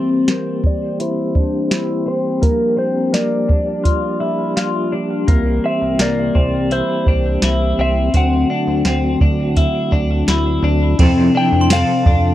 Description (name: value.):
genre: dream pop.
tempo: 84 BPM.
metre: 4/4.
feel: straight.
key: unclear.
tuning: A4 = 440 Hz.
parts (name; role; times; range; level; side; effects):
electric slide guitar; melody; 0.0-12.3 s; Bb4 to G5; -22 LUFS; equal; low-pass filter, tape echo.
mellow electric guitar; accompaniment; 0.0-0.1, 11.0-12.3 s; F3 to A4; -19 LUFS; right 2 dB; tremolo, lush chorus.
mellow tonewheel organ; sustained chords; 0.0-12.3 s; C3 to A4; -21 LUFS; right 2 dB; chorus vibrato, stopped rotary speaker, low-pass filter.
twelve-string electric guitar; arpeggios; 0.0-12.3 s; Bb3 to F4; -20 LUFS; left 4 dB; wide subtle chorus, low-pass filter, tape echo.
soft vintage rhythm box; drums; 0.3-12.2 s; hi-hat, kick drum, ride cymbal, snare drum, tambourine; -16 LUFS; equal; overdrive.
chorused synth bass; bass; 5.3-12.3 s; C2 to F2; -19 LUFS; equal; none.
glockenspiel with brass mallets; texture; 11.6-12.3 s; C6; -32 LUFS; right 1 dB; tape echo.
room: moderate small room ambience, RT60 0.5 s.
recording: dark, warm production.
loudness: -14 LUFS.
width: side -13 dB against mid.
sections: 0.0-11.0 A section; 11.0-12.3 B section.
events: filter sweep 0.0-11.0.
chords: 0.0 C7; 2.4 Gm7; 5.3 C7; 8.1 D7; 11.0 Fmaj7.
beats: 0.28 0.99 1.71 | 2.42 3.14 3.85 4.57 | 5.28 5.99 6.71 7.42 | 8.14 8.85 9.56 10.28 | 10.99 11.71.